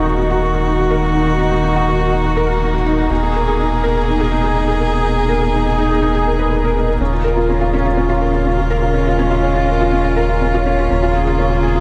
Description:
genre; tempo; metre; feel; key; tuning
electronica; 123 BPM; 4/4; straight; unclear; A4 = 440 Hz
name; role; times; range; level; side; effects
dark string quartet; sustained chords; 0.0-11.8 s; Cb3 to Ab4; -22 LUFS; equal; none
felt-muted upright piano; riff; 0.0-11.8 s; Db4 to Cb5; -19 LUFS; equal; ensemble chorus, diffuse ambient delay
round analog bass; bass; 0.0-11.8 s; Eb1; -22 LUFS; equal; none
room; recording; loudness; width
moderate huge ambient reverb, RT60 8.7 s; dreamy mix soaked in reverb; -16 LUFS; mono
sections
0.0-11.8 A section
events
none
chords
0.0 Ebm; 3.1 Abmadd9/Eb; 7.0 Db6/Eb

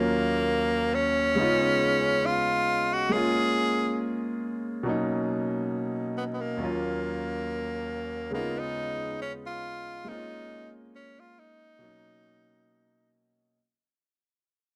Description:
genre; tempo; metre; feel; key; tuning
reggae; 69 BPM; 4/4; swing 56% on 16ths; unclear; A4 = 442 Hz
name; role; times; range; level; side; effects
edgy tenor saxophone; melody; 0.0-13.1 s; Bb3 to Ab4; -30 LUFS; equal; none
clear concert grand piano; accompaniment; 0.0-13.6 s; Eb2 to F4; -31 LUFS; equal; none
room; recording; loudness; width
studio reverb; dry, close 1970s-style studio recording; -28 LUFS; mono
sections
0.0-13.5 A section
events
fade-out 2.4-13.5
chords
0.0 Ebm7; 1.4 Db7; 3.1 Bbm7; 4.9 Bmaj7; 6.6 Ebm7; 8.3 Db7; 10.1 Bbm7; 11.8 Bmaj7

